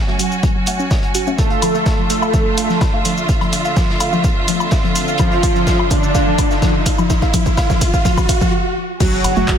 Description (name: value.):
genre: melodic techno.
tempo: 126 BPM.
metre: 4/4.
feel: straight.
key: unclear.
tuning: A4 = 440 Hz.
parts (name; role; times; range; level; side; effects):
rich studio string section; sustained chords; 0.0-9.6 s; D3 to G#5; -23 LUFS; right 1 dB; sidechain pumping.
soft round pluck; arpeggios; 0.1-9.4 s; F3 to F#6; -22 LUFS; left 1 dB; chorus, sidechain pumping, dub echo.
crunchy breakbeat drum kit; drums; 0.1-9.6 s; hi-hat, snare drum; -30 LUFS; equal; high-pass filter on hats, high-pass filter on snare, high-pass filter on room.
punchy analog drum machine; drums; 0.1-9.6 s; congas, crash cymbal, handclaps, hi-hat, shaker, woodblock; -23 LUFS; left 1 dB; sidechain pumping on perc, high-pass filter on perc, sidechain pumping on hats, high-pass filter on hats, sidechain pumping on cymbals, high-pass filter on cymbals, high-pass filter on snare, high-pass filter on room.
electronic kick drum; drums; 0.4-9.6 s; none; -17 LUFS; equal; none.
wide unison lead; melody; 1.4-9.6 s; D4 to A4; -21 LUFS; equal; ensemble chorus, sidechain pumping, dub echo.
big bright polysynth; second line; 1.4-9.6 s; D3 to A3; -24 LUFS; right 3 dB; sidechain pumping, dub echo.
riser and impact; sound effects; 3.7-9.6 s; none; -25 LUFS; equal; none.
round analog bass; bass; 9.2-9.5 s; F#1; -22 LUFS; equal; sidechain pumping.
room: light reverb.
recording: dense, heavily limited modern master.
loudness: -13 LUFS.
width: side -8 dB against mid.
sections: 0.0-9.0 A section.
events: build-up 0.0-9.0; filter sweep on analog synth lead 0.0-9.0; drum fill 1.4-8.5; riser 3.7-8.5; stop 8.5-9.0; impact 9.0-9.6.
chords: 0.0 F#5; 1.4 Dm; 9.0 F#5.